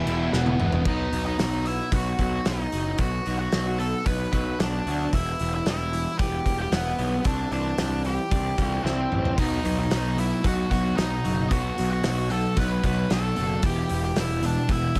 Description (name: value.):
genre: quiet-loud alternative rock.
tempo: 113 BPM.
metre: 4/4.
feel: straight.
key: unclear.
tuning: A4 = 440 Hz.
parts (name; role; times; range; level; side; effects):
octave-fuzz lead guitar; melody; 0.0-15.0 s; B3 to B5; -32 LUFS; equal; distortion.
thick fuzz guitar; riff; 0.0-1.4 s; E2 to B3; -32 LUFS; equal; distortion.
thick fuzz guitar; riff; 0.0-1.3, 9.4-15.0 s; E2 to B3; -31 LUFS; equal; distortion.
fuzz picked electric bass; bass; 0.1-15.0 s; E1 to D2; -30 LUFS; equal; overdrive.
loose indie drum kit; drums; 0.1-15.0 s; crash cymbal, hi-hat, kick drum, snare drum, toms; -30 LUFS; equal; none.
twelve-string electric guitar; arpeggios; 0.9-15.0 s; B2 to E4; -37 LUFS; equal; none.
room: light reverb.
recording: none.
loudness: -25 LUFS.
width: mono.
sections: 0.9-15.0 A section.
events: drum fill 0.3-0.9, 8.9-9.4.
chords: 0.0 E5; 0.9 B; 3.0 Bm; 5.1 Em; 7.3 Cadd9; 9.4 B; 11.5 Bm; 13.6 Em.